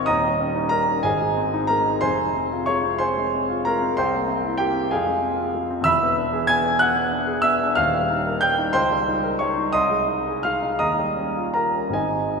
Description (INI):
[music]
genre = classical, romantic character piece for solo piano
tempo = 50-65 BPM (dotted quarters)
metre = 6/8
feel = rubato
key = unclear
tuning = A4 = 441 Hz
[part]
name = warm grand piano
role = solo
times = 0.0-12.4 s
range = Eb1 to G#6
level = -19 LUFS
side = equal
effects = none
[sound]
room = wet church reverb, RT60 3.1 s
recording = minimal, uncompressed stereo recording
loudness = -19 LUFS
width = side -4 dB against mid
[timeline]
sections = 0.0-12.4 A section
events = none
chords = 0.1 Eb7; 1.1 Ab; 2.0 Fm; 4.0 C7; 4.9 Fm; 5.9 E7; 7.8 Eb; 8.8 Eb7/Db; 9.8 Ab/C; 10.8 Eb9